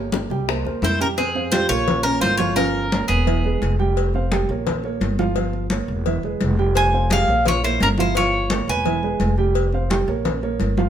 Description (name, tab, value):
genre	latin, Cuban son and guajira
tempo	172 BPM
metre	4/4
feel	straight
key	F harmonic minor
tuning	A4 = 440 Hz
part	dark baby grand piano	arpeggios	0.0-10.9 s	E3 to G5	-24 LUFS	right 6 dB	none
part	upright bass	bass	0.0-10.9 s	E1 to F2	-23 LUFS	equal	none
part	bongos and cowbell	percussion	0.1-10.8 s	none	-29 LUFS	left 8 dB	none
part	congas	percussion	0.1-10.9 s	none	-26 LUFS	left 2 dB	none
part	Cuban tres	melody	0.8-3.7, 6.8-9.3 s	Ab4 to Ab5	-21 LUFS	equal	none
part	archtop guitar, miked and amplified	second line	0.8-3.7, 6.8-9.3 s	B3 to C5	-28 LUFS	right 2 dB	none
room	moderate large studio reverb, RT60 1.2 s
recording	minimal, uncompressed stereo recording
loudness	-18 LUFS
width	side -10 dB against mid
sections	0.0-1.2 A section; 1.2-10.9 B section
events	none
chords	0.5 C7; 1.2 Fmadd9; 1.9 Bbm; 2.6 Gm7b5; 3.3 E; 4.0 Fsus2; 4.7 Bbm; 5.4 Gm7b5; 6.1 E; 6.8 Fmadd9; 7.5 Bbm; 8.2 Gm7b5; 8.9 E; 9.6 Fsus2; 10.3 Bbm